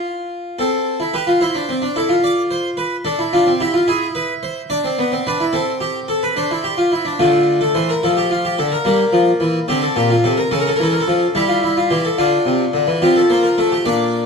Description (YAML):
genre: classical, baroque-style 3-part fugue for harpsichord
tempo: 72 BPM (dotted quarters)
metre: 12/8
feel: straight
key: D minor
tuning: A4 = 439 Hz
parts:
  - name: harpsichord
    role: solo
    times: 0.0-14.3 s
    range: Bb2 to D5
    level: -15 LUFS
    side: equal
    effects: none
room: wet stone room reverb, RT60 1.2 s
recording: dark, warm production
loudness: -15 LUFS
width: side -5 dB against mid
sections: 0.0-13.9 A section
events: none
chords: 0.0 N.C.; 0.6 Am/C; 3.9 E7; 5.5 Am/C; 7.2 Dm; 8.8 Em7b5; 10.5 A7/C#; 12.2 Dm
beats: | 0.59 1.42 2.24 3.06 | 3.89 4.71 5.53 6.36 | 7.19 8.01 8.85 9.68 | 10.51 11.34 12.18 13.01 | 13.85